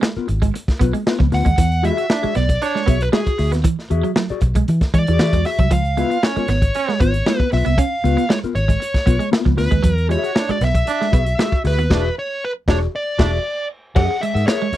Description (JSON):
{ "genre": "funk", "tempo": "116 BPM", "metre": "4/4", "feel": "straight", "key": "unclear", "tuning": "A4 = 440 Hz", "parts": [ { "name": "mellow electric guitar", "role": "accompaniment", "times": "0.0-14.8 s", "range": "Cb4 to Gb5", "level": "-24 LUFS", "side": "left 7 dB", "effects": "tremolo" }, { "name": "electric guitar at the edge of break-up", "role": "riff", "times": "0.0-14.8 s", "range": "E3 to Db4", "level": "-24 LUFS", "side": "right 6 dB", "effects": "analog chorus" }, { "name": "crunchy breakbeat drum kit", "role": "drums", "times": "0.0-14.8 s", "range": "crash cymbal, hi-hat, kick drum, snare drum", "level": "-18 LUFS", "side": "equal", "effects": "none" }, { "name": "vintage muted fingered electric bass", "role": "bass", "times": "0.2-14.8 s", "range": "E1 to E3", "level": "-19 LUFS", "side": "equal", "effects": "none" }, { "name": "dark smooth lead guitar", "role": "melody", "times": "1.3-14.8 s", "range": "G#4 to Gb5", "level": "-22 LUFS", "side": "equal", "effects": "overdrive" }, { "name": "brilliant trombone", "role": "second line", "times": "1.8-2.8, 6.0-7.0, 10.1-13.3 s", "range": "Db4 to F#4", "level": "-25 LUFS", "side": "right 9 dB", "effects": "none" }, { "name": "cowbell", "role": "percussion", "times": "14.0-14.6 s", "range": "none", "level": "-30 LUFS", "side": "left 5 dB", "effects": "none" } ], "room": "little or no reverb", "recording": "dry, close 1970s-style studio recording", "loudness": "-16 LUFS", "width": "side -13 dB against mid", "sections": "0.0-14.0 A section", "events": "band accent 11.9-14.0", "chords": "0.0 Db13 (rootless); 1.6 E9; 5.7 Db13; 9.8 E9; 14.0 Gb9", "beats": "0.03 0.55 1.06 | 1.58 2.10 2.62 3.13 | 3.65 4.17 4.68 5.20 | 5.72 6.23 6.75 7.26 | 7.78 8.30 8.81 9.33 | 9.84 10.36 10.88 11.39 | 11.90 12.42 12.93 13.45 | 13.96 14.48" }